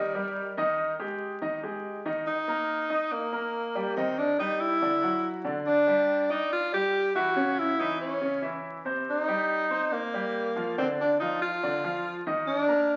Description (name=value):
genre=jazz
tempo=141 BPM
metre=4/4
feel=straight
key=Eb major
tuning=A4 = 440 Hz
part: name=warm tenor saxophone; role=melody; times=0.0-13.0 s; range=G3 to G4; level=-29 LUFS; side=equal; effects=none
part: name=warm baby grand piano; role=accompaniment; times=0.0-13.0 s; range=C3 to Eb6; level=-33 LUFS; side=equal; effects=none
room=wet large studio reverb, RT60 1.2 s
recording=very old 78 rpm record, vinyl crackle, nothing above 7.6 kHz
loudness=-28 LUFS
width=mono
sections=0.0-2.3 A section; 2.3-13.0 B section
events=tenor saxophone solo 0.0-2.3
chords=0.0 Eb; 0.6 Ab5; 2.3 Eb; 4.0 Ebmaj7; 4.8 D; 5.7 G5; 7.4 Dbm; 8.2 Dbmmaj7; 9.1 Cm7; 10.8 Dm